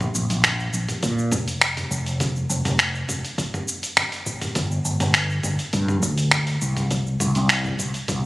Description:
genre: sunset chillout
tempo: 102 BPM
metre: 4/4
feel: straight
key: unclear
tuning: A4 = 440 Hz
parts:
  - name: mellow fretless electric bass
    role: bass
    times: 0.0-8.3 s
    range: F1 to Bb2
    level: -23 LUFS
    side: equal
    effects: wide subtle chorus
  - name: dusty soul sampler-style drum kit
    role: drums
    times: 0.0-8.2 s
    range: finger snaps, hi-hat, shaker, toms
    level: -23 LUFS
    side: equal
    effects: overdrive
  - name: electronic kick drum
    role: drums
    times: 1.0-8.2 s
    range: none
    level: -30 LUFS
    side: equal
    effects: overdrive
room: moderate concert hall reverb, RT60 1.8 s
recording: recorded on a phone in the room, studio ambience, compression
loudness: -20 LUFS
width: side -19 dB against mid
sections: 0.0-8.3 A section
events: none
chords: none

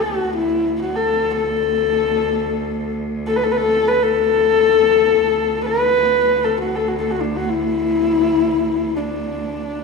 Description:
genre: mongolian traditional, Mongolian folk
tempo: free time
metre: none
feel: none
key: D gong mode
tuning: A4 = 442 Hz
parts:
  - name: dark horsehead fiddle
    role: melody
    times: 0.0-9.8 s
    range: D4 to B4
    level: -16 LUFS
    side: left 4 dB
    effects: none
  - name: clear cello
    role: drone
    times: 0.0-9.8 s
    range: D2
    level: -26 LUFS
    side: right 3 dB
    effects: none
room: wet scoring stage reverb, RT60 1.8 s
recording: none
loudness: -16 LUFS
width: side -4 dB against mid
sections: 0.0-9.8 A section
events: none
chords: none

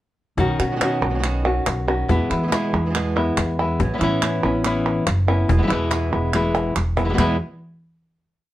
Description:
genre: flamenco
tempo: 142 BPM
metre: 4/4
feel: straight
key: E major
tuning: A4 = 440 Hz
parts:
  - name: nylon-string guitar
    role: accompaniment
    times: 0.4-7.4 s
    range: E2 to F#4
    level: -22 LUFS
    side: left 2 dB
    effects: none
  - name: flamenco guitar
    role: stabs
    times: 0.4-7.4 s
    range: E2 to F#4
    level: -27 LUFS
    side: right 4 dB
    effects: none
  - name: upright bass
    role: bass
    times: 0.4-7.4 s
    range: E1 to E3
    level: -23 LUFS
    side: equal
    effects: none
  - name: cajon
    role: percussion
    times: 0.4-7.3 s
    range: none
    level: -25 LUFS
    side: left 4 dB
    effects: none
  - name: palmas hand claps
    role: percussion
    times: 0.6-7.3 s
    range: none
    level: -26 LUFS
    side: right 4 dB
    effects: none
room: light reverb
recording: worn, warbling old tape, cassette tape, warbly pitch drift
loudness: -18 LUFS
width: side -14 dB against mid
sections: 0.4-7.2 groove; 7.2-8.5 final chord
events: drum fill 6.3-7.2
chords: 0.4 Badd9; 2.1 E; 3.8 Aadd9; 5.5 E

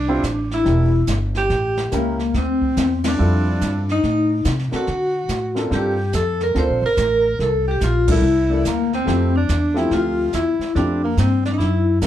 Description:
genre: jazz, small-group swing and bop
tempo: 143 BPM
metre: 4/4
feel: swing 65% on 8ths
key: F major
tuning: A4 = 441 Hz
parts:
  - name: vibraphone with medium mallets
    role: melody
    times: 0.0-12.1 s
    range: Bb3 to C5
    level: -20 LUFS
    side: left 3 dB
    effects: none
  - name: clear alto saxophone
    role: second line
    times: 0.0-12.1 s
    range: Bb3 to C5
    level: -26 LUFS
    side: right 4 dB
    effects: none
  - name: upright bass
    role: bass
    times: 0.0-12.1 s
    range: E1 to D3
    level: -21 LUFS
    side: right 1 dB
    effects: none
  - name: warm baby grand piano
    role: accompaniment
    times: 0.1-12.1 s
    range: F3 to E5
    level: -24 LUFS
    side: equal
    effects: none
  - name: jazz brush drum kit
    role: drums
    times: 0.2-12.1 s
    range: brushed snare drum, crash cymbal, hi-hat, kick drum, ride cymbal, snare drum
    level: -28 LUFS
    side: right 1 dB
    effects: none
room: light reverb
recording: dark, warm production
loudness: -17 LUFS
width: side -11 dB against mid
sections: 0.0-12.1 A section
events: band accent 3.0, 8.0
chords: 0.0 Fmaj7; 0.7 Em7b5; 1.5 A7b9; 2.3 Dm11; 4.0 Adim; 4.9 D7b13; 5.7 Gm11; 7.4 C13; 9.1 Fmaj7

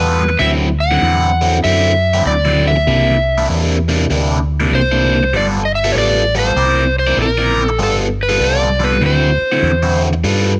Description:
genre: electric blues shuffle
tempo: 98 BPM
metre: 4/4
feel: swing 65% on 8ths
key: unclear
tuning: A4 = 440 Hz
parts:
  - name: overdriven slide guitar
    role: melody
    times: 0.0-10.0 s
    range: A4 to F#5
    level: -18 LUFS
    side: equal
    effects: none
  - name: cranked stack guitar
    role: riff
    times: 0.0-10.5 s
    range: C3 to D5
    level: -19 LUFS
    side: equal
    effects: overdrive, phaser
  - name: deep dub fingered electric bass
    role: bass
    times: 0.0-10.6 s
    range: G1 to G2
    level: -20 LUFS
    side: equal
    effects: none
room: little or no reverb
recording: none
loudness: -14 LUFS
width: mono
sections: 0.0-10.2 A section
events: none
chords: 0.4 D9; 2.9 C9; 5.3 G9; 6.6 C9; 7.8 G9; 9.0 D9

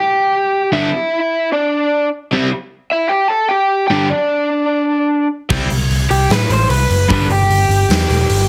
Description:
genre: punk rock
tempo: 151 BPM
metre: 4/4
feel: straight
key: G major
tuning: A4 = 439 Hz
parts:
  - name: lead guitar through a small cranked amp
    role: melody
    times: 0.0-8.5 s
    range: D4 to C6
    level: -17 LUFS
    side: equal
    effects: overdrive
  - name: overdriven semi-hollow guitar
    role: riff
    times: 0.7-7.3 s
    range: G2 to C4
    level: -21 LUFS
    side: equal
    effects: none
  - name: tight distorted guitar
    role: riff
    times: 0.7-7.3 s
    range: G2 to E4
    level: -24 LUFS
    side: equal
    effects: distortion
  - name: overdriven picked electric bass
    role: bass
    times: 5.5-8.4 s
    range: E1 to A2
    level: -18 LUFS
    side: equal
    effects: none
  - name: big rock drum kit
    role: drums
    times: 5.5-8.4 s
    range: crash cymbal, hi-hat, kick drum, snare drum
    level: -21 LUFS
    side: equal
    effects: none
room: light reverb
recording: heavily compressed radio sound, multiband compression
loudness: -15 LUFS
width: mono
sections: 0.0-8.5 A section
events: half time 0.0-8.5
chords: 0.0 N.C.; 0.7 G5; 2.3 C; 3.9 G5; 5.5 C5; 7.1 G

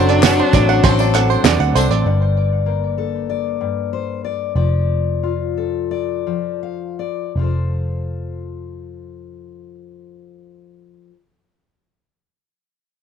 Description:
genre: indie folk with a building arrangement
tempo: 79-99 BPM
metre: 4/4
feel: straight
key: F major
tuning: A4 = 441 Hz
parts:
  - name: rich cello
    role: melody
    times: 0.0-1.4 s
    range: D4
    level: -21 LUFS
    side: right 2 dB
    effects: none
  - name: clear French horn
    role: second line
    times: 0.0-1.7 s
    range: F#3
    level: -21 LUFS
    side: left 13 dB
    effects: none
  - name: picked twelve-string acoustic guitar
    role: accompaniment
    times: 0.0-2.1 s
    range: F#3 to A4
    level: -23 LUFS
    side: left 14 dB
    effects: none
  - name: warm upright piano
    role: accompaniment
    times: 0.0-2.1 s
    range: F#1 to A5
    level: -25 LUFS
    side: right 12 dB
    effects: none
  - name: bluegrass banjo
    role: arpeggios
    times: 0.0-2.1 s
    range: C5 to F#5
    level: -20 LUFS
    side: right 10 dB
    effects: tape echo
  - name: picked electric bass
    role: bass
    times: 0.0-11.0 s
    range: F1 to E2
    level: -19 LUFS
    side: equal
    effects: none
  - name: cloth-damped thuddy drum kit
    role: drums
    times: 0.1-2.0 s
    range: hi-hat, kick drum, snare drum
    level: -17 LUFS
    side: right 4 dB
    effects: none
  - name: group handclap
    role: percussion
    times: 0.2-1.6 s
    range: none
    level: -27 LUFS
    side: left 12 dB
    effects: none
  - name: tambourine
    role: percussion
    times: 0.2-2.0 s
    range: none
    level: -34 LUFS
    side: left 14 dB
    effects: none
  - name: fingerpicked steel-string acoustic guitar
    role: accompaniment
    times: 2.1-11.2 s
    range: G2 to F5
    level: -24 LUFS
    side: left 11 dB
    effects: none
room: light reverb, small room ambience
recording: 1960s-style stereo with parts hard left and right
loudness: -16 LUFS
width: side -7 dB against mid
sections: 0.0-2.0 A section; 2.0-7.4 B section; 7.4-10.4 C section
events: upright piano fill 0.8-2.0; slowing down 2.0-7.4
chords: 0.0 D7/F#; 2.0 Gmadd9; 4.6 Dm/F; 7.4 F

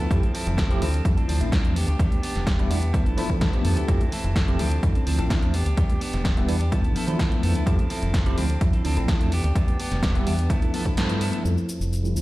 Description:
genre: filtered disco house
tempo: 127 BPM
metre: 4/4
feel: straight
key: unclear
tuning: A4 = 443 Hz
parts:
  - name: bell-like tine electric piano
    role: accompaniment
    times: 0.0-12.2 s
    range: E3 to G4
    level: -29 LUFS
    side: equal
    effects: fast stereo tremolo, phaser, sidechain pumping, low-pass filter
  - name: clean electric guitar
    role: riff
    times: 0.0-12.2 s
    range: E3 to A4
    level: -31 LUFS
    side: right 1 dB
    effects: sidechain pumping, low-pass filter
  - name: deep dub fingered electric bass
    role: bass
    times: 0.0-12.2 s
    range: E1 to E3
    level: -24 LUFS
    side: equal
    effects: sidechain pumping, low-pass filter
  - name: punchy analog drum machine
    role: drums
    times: 0.0-12.2 s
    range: hi-hat, shaker, snare drum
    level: -32 LUFS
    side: equal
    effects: overdrive, sidechain pumping on hats, sidechain pumping on cymbals, sidechain pumping on perc
  - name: electronic kick drum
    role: drums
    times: 0.1-10.9 s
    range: none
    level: -22 LUFS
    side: equal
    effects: overdrive
  - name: tube shaker and congas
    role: percussion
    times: 0.1-11.4 s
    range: none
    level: -37 LUFS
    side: right 2 dB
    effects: none
room: little or no reverb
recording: played on a big sound system in a bare room, stone room reverb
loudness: -20 LUFS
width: side -18 dB against mid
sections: 0.0-11.4 A section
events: kick drops out 11.0-11.4; band accent 11.0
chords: 0.1 Fmaj7; 0.8 Dm7; 1.8 Em7; 2.9 G13; 3.9 Fmaj7; 4.6 Dm7; 5.5 Em7; 6.7 G13; 7.7 Fmaj7; 8.4 Dm7; 9.3 Em7; 10.5 G13; 11.4 Fmaj7

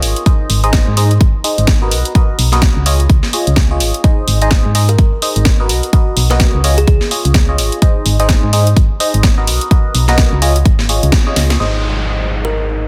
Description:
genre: piano house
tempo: 127 BPM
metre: 4/4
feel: swing 59% on 16ths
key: Ab major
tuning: A4 = 439 Hz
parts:
  - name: barking FM electric piano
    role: riff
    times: 0.0-12.9 s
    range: Eb4 to Eb5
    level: -21 LUFS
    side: equal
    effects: phaser, sidechain pumping, delay
  - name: solid FM bass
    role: bass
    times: 0.0-12.9 s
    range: Ab1 to Ab2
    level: -16 LUFS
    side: equal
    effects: sidechain pumping
  - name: house drum kit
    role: drums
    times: 0.0-11.6 s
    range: hi-hat, snare drum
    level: -20 LUFS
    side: equal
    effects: none
  - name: electronic kick drum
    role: drums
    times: 0.3-11.2 s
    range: none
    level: -14 LUFS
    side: equal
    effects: none
  - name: kalimba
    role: melody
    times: 4.9-7.0, 12.4-12.6 s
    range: Ab4 to B4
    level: -27 LUFS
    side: equal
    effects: delay
  - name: downlifter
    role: sound effects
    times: 11.6-12.9 s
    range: none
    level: -24 LUFS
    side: equal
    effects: none
room: light reverb, digital ambience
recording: dense, heavily limited modern master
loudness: -13 LUFS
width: mono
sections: 0.0-11.6 A section; 11.6-12.9 B section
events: band accent 11.1; drum fill 11.4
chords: 0.3 Ab; 1.9 Bmaj7; 2.9 Dbadd9; 4.0 Ab; 5.7 Bmaj7; 6.6 Dbadd9; 7.8 Ab; 9.5 Bmaj7; 10.4 Dbadd9; 11.6 Ab

